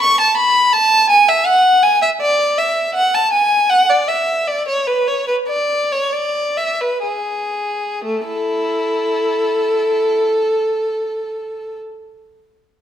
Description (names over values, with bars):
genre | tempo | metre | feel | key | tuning
classical, baroque-style suite movement for unaccompanied violin | 58-85 BPM | 3/4 | rubato | A major | A4 = 440 Hz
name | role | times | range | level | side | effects
rich violin | solo | 0.0-11.8 s | A3 to C#6 | -14 LUFS | equal | none
room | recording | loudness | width
wet recital hall reverb, RT60 1.4 s | none | -14 LUFS | side -10 dB against mid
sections
0.0-8.0 A section; 8.0-11.0 B section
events
slowing down 1.8-8.0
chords
none